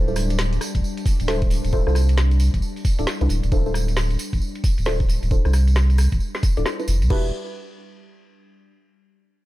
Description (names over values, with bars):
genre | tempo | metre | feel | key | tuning
UK garage, two-step garage | 134 BPM | 4/4 | swing 62% on 16ths | unclear | A4 = 441 Hz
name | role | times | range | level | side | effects
airy breathy pad | sustained chords | 0.0-7.1 s | G3 to D4 | -33 LUFS | equal | chorus, vintage 12-bit sampler grit, sidechain pumping
deep mellow chord stab | stabs | 0.0-7.3 s | D4 to D5 | -28 LUFS | left 1 dB | analog chorus, vintage 12-bit sampler grit, digital delay
soft dub sub bass | bass | 0.0-7.3 s | D1 to C2 | -19 LUFS | equal | sidechain pumping
tambourine | percussion | 0.1-7.1 s | none | -36 LUFS | right 4 dB | none
garage drum kit | drums | 0.2-7.2 s | crash cymbal, hi-hat, rim click, snare drum | -30 LUFS | left 1 dB | low-pass filter on snare, low-pass filter on hats, low-pass filter on cymbals, low-pass filter on room
electronic kick drum | drums | 0.7-7.2 s | none | -21 LUFS | equal | none
room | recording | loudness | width
little or no reverb | dark, warm production | -18 LUFS | side -17 dB against mid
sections
0.0-7.1 A section; 7.1-8.9 B section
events
none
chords
0.0 Dm9; 7.1 Em9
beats
0.39 0.83 1.28 | 1.73 2.18 2.62 3.07 | 3.52 3.97 4.42 4.86 | 5.31 5.76 6.21 6.65 | 7.10